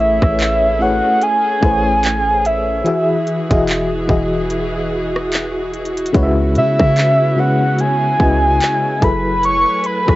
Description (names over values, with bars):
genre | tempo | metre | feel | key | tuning
contemporary R&B | 73 BPM | 4/4 | swing 58% on 16ths | C# minor | A4 = 440 Hz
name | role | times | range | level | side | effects
soft octave-layered synth lead | melody | 0.0-10.2 s | E5 to C#6 | -16 LUFS | equal | chorus, cassette tape
FM electric piano with tremolo | accompaniment | 0.0-10.2 s | C#3 to E5 | -20 LUFS | left 2 dB | none
warm studio string section | sustained chords | 0.0-10.2 s | C#3 to G#5 | -24 LUFS | right 2 dB | none
warm 808-style bass | bass | 0.0-10.2 s | E1 to C#3 | -19 LUFS | equal | none
trap drum kit | drums | 0.2-10.2 s | handclaps, hi-hat, kick drum, rim click | -19 LUFS | equal | overdrive, cassette tape
room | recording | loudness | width
light reverb | home recording on cassette, nothing above 7.8 kHz | -13 LUFS | side -17 dB against mid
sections
0.0-10.2 A section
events
none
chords
0.0 Amaj9; 2.9 Emaj9; 6.1 C#m11; 9.0 F#m11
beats
0.39 1.21 2.04 | 2.86 3.68 4.50 5.32 | 6.14 6.97 7.79 8.61 | 9.43